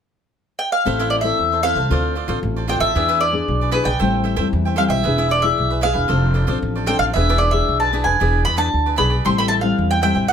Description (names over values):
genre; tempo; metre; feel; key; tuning
samba; 114 BPM; 4/4; straight; A minor; A4 = 443 Hz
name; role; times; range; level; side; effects
mandolin; melody; 0.6-10.3 s; B4 to C6; -19 LUFS; equal; none
cavaquinho; accompaniment; 0.9-10.3 s; E4 to G5; -26 LUFS; right 7 dB; none
nylon-string guitar; accompaniment; 0.9-10.3 s; A2 to A4; -23 LUFS; left 5 dB; none
upright bass; bass; 0.9-10.3 s; E1 to E2; -21 LUFS; right 1 dB; none
room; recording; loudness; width
light reverb; none; -16 LUFS; side -8 dB against mid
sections
0.9-10.3 A section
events
none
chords
0.0 N.C.; 0.9 Am; 1.9 Dm7; 3.0 E7; 4.0 Am7; 5.1 E; 6.1 Dm7/F; 7.2 E7; 9.3 Am7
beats
0.34 | 0.86 1.38 1.91 2.43 | 2.96 3.48 4.00 4.53 | 5.05 5.58 6.11 6.63 | 7.16 7.68 8.21 8.73 | 9.26 9.78 10.31